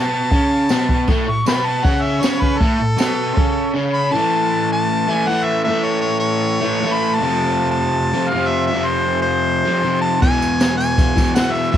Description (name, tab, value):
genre	garage rock duo or trio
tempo	158 BPM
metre	4/4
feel	straight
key	A major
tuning	A4 = 444 Hz
part	bright harmonica	melody	0.0-11.8 s	A4 to C#6	-20 LUFS	left 1 dB	overdrive, cassette tape
part	crunchy overdriven guitar	riff	0.0-11.8 s	E2 to C#4	-18 LUFS	equal	cassette tape
part	jazz brush drum kit	drums	0.3-3.5, 10.2-11.8 s	crash cymbal, hi-hat, kick drum, snare drum	-18 LUFS	equal	cassette tape
part	tambourine	percussion	0.7-3.1, 10.2-11.8 s	none	-34 LUFS	right 8 dB	none
room	light reverb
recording	home recording on cassette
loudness	-15 LUFS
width	side -10 dB against mid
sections	0.0-4.1 A section; 4.1-11.8 B section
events	harmonica solo 0.0-4.1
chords	0.0 A; 7.2 F; 10.2 E